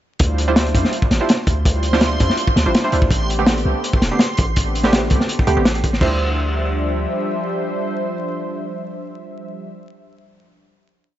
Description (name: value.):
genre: drum and bass, jungle.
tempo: 165 BPM.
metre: 4/4.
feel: swing 53% on 16ths.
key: D dorian.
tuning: A4 = 440 Hz.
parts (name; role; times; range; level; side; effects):
lush unison pad; sustained chords; 0.2-9.7 s; D3 to E5; -25 LUFS; equal; chorus.
warm 808-style bass; bass; 0.2-7.1 s; E1 to F2; -20 LUFS; equal; none.
crunchy breakbeat drum kit; drums; 0.2-6.1 s; crash cymbal, hi-hat, kick drum, snare drum; -17 LUFS; equal; none.
backwards swelling texture; texture; 1.4-6.0 s; C6; -30 LUFS; right 2 dB; built-in reverb.
filtered dub chord stab; stabs; 0.5-10.4 s; D3 to C5; -23 LUFS; right 3 dB; chorus, cassette tape, dub echo.
room: light reverb, studio ambience.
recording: vinyl crackle, nothing above 7.8 kHz.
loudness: -16 LUFS.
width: side -12 dB against mid.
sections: 0.2-6.0 drop; 6.0-8.9 final chord.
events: drop 0.2-6.0.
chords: 0.2 Dm11; 3.1 Am11; 6.0 Dm11.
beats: | 0.20 0.56 0.93 1.29 | 1.65 2.02 2.38 2.75 | 3.11 3.47 3.84 4.20 | 4.56 4.93 5.29 5.65 | 6.02 6.38 6.75 7.11 | 7.47 7.84 8.20 8.56.